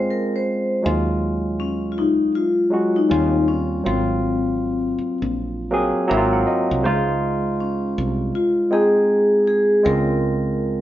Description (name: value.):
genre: R&B, neo-soul.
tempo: 80 BPM.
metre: 4/4.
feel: swing 62% on 16ths.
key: unclear.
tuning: A4 = 438 Hz.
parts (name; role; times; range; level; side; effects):
vibraphone with medium hard mallets; melody; 0.0-10.8 s; C4 to C5; -20 LUFS; left 2 dB; none.
barky tine electric piano; accompaniment; 0.0-10.8 s; Gb3 to Bb5; -22 LUFS; right 1 dB; overdrive.
woody fretless electric bass; bass; 0.9-10.8 s; Ab1 to Eb2; -25 LUFS; equal; none.
room: moderate large studio reverb, RT60 1.3 s.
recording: band playing live in one room, nothing above 7.5 kHz.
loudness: -17 LUFS.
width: side -13 dB against mid.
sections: 0.8-10.8 A section.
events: tine electric piano fill 5.7-6.8.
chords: 0.0 Bbm9/Ab; 0.8 Ebm11; 3.1 Eb13; 3.8 Ab13; 6.8 Dbmaj7; 9.8 Bbm9.